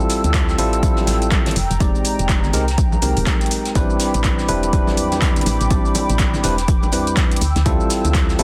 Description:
deep house; 123 BPM; 4/4; swing 60% on 16ths; A minor; A4 = 439 Hz
hollow soft pad; sustained chords; 0.0-8.4 s; G5 to E6; -29 LUFS; equal; chorus, sidechain pumping
bell-like tine electric piano; stabs; 0.0-8.4 s; G3 to D5; -24 LUFS; equal; sidechain pumping, low-pass filter
deep house drum kit; drums; 0.0-8.4 s; handclaps, hi-hat, shaker; -27 LUFS; equal; overdrive
soft brush drum kit; drums; 0.1-8.4 s; hi-hat, snare drum; -36 LUFS; equal
woody FM bass; bass; 0.2-8.4 s; Eb1 to E2; -24 LUFS; equal; tube saturation, sidechain pumping
electronic kick drum; drums; 0.3-8.3 s; -22 LUFS; equal; overdrive
congas; percussion; 1.0-8.1 s; -32 LUFS; equal
light reverb, studio ambience; dense, heavily limited modern master; -18 LUFS; mono
0.0-8.4 A section
0.0 Dm11; 1.6 Fm11; 3.8 Am11; 7.4 Dm11

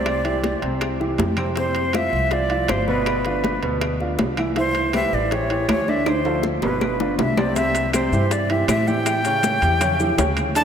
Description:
Afro-Cuban jazz; 160 BPM; 4/4; straight; C major; A4 = 442 Hz
breathy bright jazz flute; melody; 0.0-10.6 s; B4 to A5; -23 LUFS; right 1 dB
bright upright piano; accompaniment; 0.0-10.6 s; B2 to E5; -24 LUFS; right 1 dB
upright bass; bass; 0.0-10.6 s; G1 to A2; -26 LUFS; equal
bongos; percussion; 0.1-10.6 s; -30 LUFS; left 7 dB
claves; percussion; 0.1-10.6 s; -38 LUFS; left 5 dB
congas; percussion; 0.1-10.6 s; -29 LUFS; left 1 dB
timbales; percussion; 0.1-10.6 s; -28 LUFS; right 3 dB
maracas; percussion; 7.6-10.6 s; -33 LUFS; left 8 dB
wet cathedral reverb, RT60 5.2 s; in a vast, echoing space; -18 LUFS; side -8 dB against mid
0.0-7.6 A section; 7.6-10.6 B section
drum fill 6.1-7.6
0.1 Cadd9; 1.6 F5; 3.1 G6; 4.6 Cmaj7; 5.3 A7; 6.1 Dm7; 6.8 G7; 7.6 C6; 9.1 A7

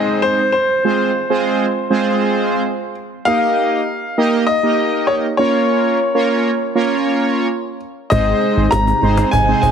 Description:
synth-pop; 99 BPM; 4/4; straight; Ab major; A4 = 440 Hz
clear grand piano; melody; 0.0-9.7 s; C5 to Bb5; -18 LUFS; left 3 dB; ping-pong delay
analog synth brass; accompaniment; 0.0-9.7 s; Ab3 to Eb5; -17 LUFS; right 3 dB; chorus
downlifter; sound effects; 0.0-3.3 s; -36 LUFS; right 1 dB
phased string machine; sustained chords; 8.1-9.7 s; C3 to Eb4; -23 LUFS; right 2 dB; ensemble chorus, phaser
chorused synth bass; bass; 8.1-9.7 s; Ab1; -18 LUFS; equal
cajon; drums; 8.1-9.7 s; -20 LUFS; equal
moderate plate reverb, RT60 2.2 s; heavily compressed radio sound; -14 LUFS; side -7 dB against mid
0.0-9.7 A section
0.0 Ab; 0.8 Fm; 3.3 Eb; 5.4 Bbm; 8.1 Ab

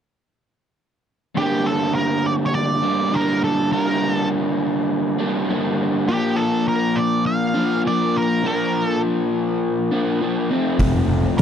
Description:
blues rock power trio and southern rock; 102 BPM; 4/4; straight; G minor; A4 = 440 Hz
octave-fuzz lead guitar; melody; 1.4-11.4 s; G4 to F5; -23 LUFS; right 2 dB; wah, distortion
crunchy overdriven guitar; riff; 1.4-11.4 s; F2 to D4; -19 LUFS; equal
overdriven picked electric bass; bass; 10.8-11.4 s; F1 to C2; -21 LUFS; equal
oversized low-tuned drum kit; drums; 10.8-11.4 s; hi-hat, kick drum, snare drum; -18 LUFS; equal
light reverb; -18 LUFS; side -8 dB against mid
1.4-11.4 A section
1.4 Gm; 6.1 Bb; 10.5 F

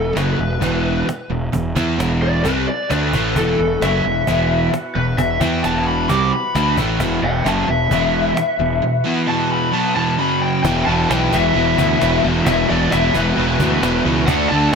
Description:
hard rock; 132 BPM; 4/4; straight; A4 = 440 Hz
lead guitar through a small cranked amp; melody; 0.0-14.8 s; A4 to D6; -20 LUFS; left 2 dB; overdrive
overdriven semi-hollow guitar; riff; 0.0-14.7 s; E2 to E4; -22 LUFS; left 8 dB; lush chorus
overdriven semi-hollow guitar; riff; 0.0-14.8 s; E2 to E4; -22 LUFS; right 10 dB; lush chorus
fuzz fingered electric bass; bass; 0.0-14.8 s; E1 to E2; -22 LUFS; equal; overdrive
cajon; drums; 0.2-14.7 s; -24 LUFS; equal
overdriven tonewheel organ; sustained chords; 3.4-14.8 s; E3 to E5; -31 LUFS; right 1 dB; slow rotary speaker
distorted electric guitar; riff; 10.6-14.8 s; E2 to D4; -23 LUFS; equal; distortion
moderate plate reverb, RT60 1.4 s; bright 1980s-style digital production; -15 LUFS; side -5 dB against mid
0.0-10.6 A section; 10.6-14.8 B section
lead electric guitar solo 0.0-10.6
0.0 E5; 10.2 F#5; 10.6 E5

